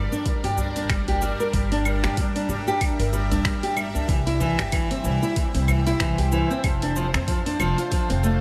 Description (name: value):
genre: organic downtempo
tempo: 94 BPM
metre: 4/4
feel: swing 58% on 16ths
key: G dorian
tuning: A4 = 444 Hz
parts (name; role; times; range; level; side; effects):
- bowed-like drone; sustained chords; 0.0-8.4 s; G3 to F5; -34 LUFS; equal; built-in reverb, phaser, sidechain pumping, shimmer reverb
- nylon-string guitar; arpeggios; 0.0-8.4 s; E3 to Bb4; -28 LUFS; equal; digital delay, shimmer reverb
- upright bass; bass; 0.0-8.4 s; F1 to G2; -28 LUFS; equal; sidechain pumping
- deep house drum kit; drums; 0.1-8.4 s; claves, finger snaps, hi-hat, shaker; -33 LUFS; equal; overdrive
- electronic kick drum; drums; 0.3-8.1 s; none; -28 LUFS; equal; overdrive
- udu; percussion; 0.6-6.3 s; none; -32 LUFS; equal; none
room: moderate echo chamber reverb, RT60 1.8 s, studio ambience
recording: none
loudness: -23 LUFS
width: mono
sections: 0.0-8.4 A section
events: none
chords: 0.0 Gm; 4.1 C; 6.6 F6